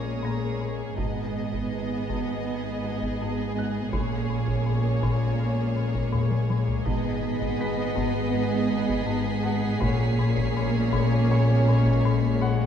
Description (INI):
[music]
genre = cinematic, suspense film score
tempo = 81 BPM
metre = 4/4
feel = straight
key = Bb phrygian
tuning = A4 = 440 Hz
[part]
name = warm studio violin section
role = melody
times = 0.0-12.7 s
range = Db5 to Eb5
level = -36 LUFS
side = left 1 dB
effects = none
[part]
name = rich studio violin section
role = second line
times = 0.0-12.7 s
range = Ab4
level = -36 LUFS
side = right 2 dB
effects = none
[part]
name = rich studio viola section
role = accompaniment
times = 0.0-12.7 s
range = Bb3 to Cb4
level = -32 LUFS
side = right 1 dB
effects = none
[part]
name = mellow French horn section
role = sustained chords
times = 0.0-12.7 s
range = Ab3 to Db4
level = -32 LUFS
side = left 2 dB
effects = none
[part]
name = folk marimba with hard mallets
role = riff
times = 0.0-12.6 s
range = Ab2 to Bb2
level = -28 LUFS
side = left 5 dB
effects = none
[part]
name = dark chamber cello section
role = bass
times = 0.0-12.7 s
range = Ab2 to Bb2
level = -30 LUFS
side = right 4 dB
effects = none
[part]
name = warm studio double bass section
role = bass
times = 0.0-12.7 s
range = Ab1 to Bb1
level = -31 LUFS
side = right 4 dB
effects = none
[part]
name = bright grand piano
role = texture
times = 0.0-12.7 s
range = Cb5 to Cb7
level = -40 LUFS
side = equal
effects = none
[part]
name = warm studio violin section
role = texture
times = 0.0-0.6, 6.9-12.4 s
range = Eb6 to C7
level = -42 LUFS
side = right 1 dB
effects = none
[part]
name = solo taiko drums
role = drums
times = 1.0-12.6 s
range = none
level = -34 LUFS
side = right 1 dB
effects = none
[sound]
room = wet scoring stage reverb, RT60 1.6 s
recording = dark, warm production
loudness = -23 LUFS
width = side -8 dB against mid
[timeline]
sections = 0.0-12.7 A section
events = drum fill 6.1-6.9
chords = 0.0 Bbm7; 1.0 Abm; 3.9 Bbm7; 6.9 Abm; 9.8 Bbm7